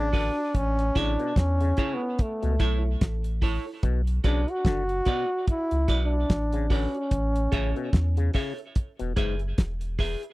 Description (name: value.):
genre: roots reggae.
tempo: 73 BPM.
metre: 4/4.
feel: swing 58% on 16ths.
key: A major.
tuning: A4 = 440 Hz.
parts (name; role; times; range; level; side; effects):
breathy trombone; melody; 0.0-8.4 s; A3 to F#4; -28 LUFS; equal; tape echo.
auto-wah clav; arpeggios; 0.0-9.3 s; G#2 to D3; -34 LUFS; left 7 dB; none.
soft dub sub bass; bass; 0.0-10.2 s; E1 to E2; -26 LUFS; equal; none.
semi-hollow electric guitar; accompaniment; 0.1-10.2 s; E4 to E5; -34 LUFS; right 4 dB; tube saturation, tape echo.
cloth-damped thuddy drum kit; drums; 0.1-10.3 s; hi-hat, kick drum, snare drum; -24 LUFS; equal; none.
room: little or no reverb.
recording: dry, close 1970s-style studio recording.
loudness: -23 LUFS.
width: side -19 dB against mid.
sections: 0.0-10.3 A section.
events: none.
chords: 0.0 Bm; 0.5 A; 3.8 Bm; 7.1 A; 8.8 E.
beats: | 0.55 1.37 2.19 3.01 | 3.83 4.65 5.47 6.30 | 7.12 7.94 8.76 9.58.